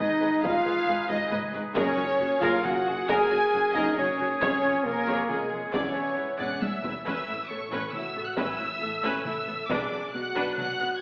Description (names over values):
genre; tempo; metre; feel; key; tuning
cinematic, epic orchestral film score; 136 BPM; 3/4; straight; F# major, A major from 7.0 s; A4 = 440 Hz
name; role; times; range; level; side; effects
dark symphonic violin section; melody; 0.0-11.0 s; G#4 to F#6; -37 LUFS; equal; none
mellow flute section; second line; 0.0-6.6 s; G#4 to G#5; -35 LUFS; equal; none
rich symphonic violin section; second line; 0.0-11.0 s; G#4 to G#5; -37 LUFS; equal; none
rich symphonic viola section; accompaniment; 0.0-10.9 s; F#3 to D5; -35 LUFS; equal; none
clear woodwind section; sustained chords; 0.0-6.8 s; B3 to G#5; -35 LUFS; equal; none
dark French horn section; sustained chords; 0.0-11.0 s; G#3 to A4; -31 LUFS; equal; none
clear symphonic double bass section; bass; 0.0-10.9 s; E1 to B1; -44 LUFS; equal; none
rich symphonic cello section; bass; 0.0-10.9 s; E2 to B2; -42 LUFS; equal; none
taiko ensemble; drums; 0.0-10.8 s; none; -38 LUFS; equal; none
timpani; percussion; 1.8-2.4 s; F#2; -47 LUFS; equal; none
room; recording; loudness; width
wet recital hall reverb, RT60 1.4 s; recorded in a church or concert hall, AM radio sound; -27 LUFS; mono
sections
0.0-7.0 A section; 7.0-11.0 A section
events
drum fill 6.4-7.0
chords
0.0 G#m; 1.8 F#add9; 4.4 C#/E#; 5.7 E7; 7.0 Aadd9; 9.7 Bm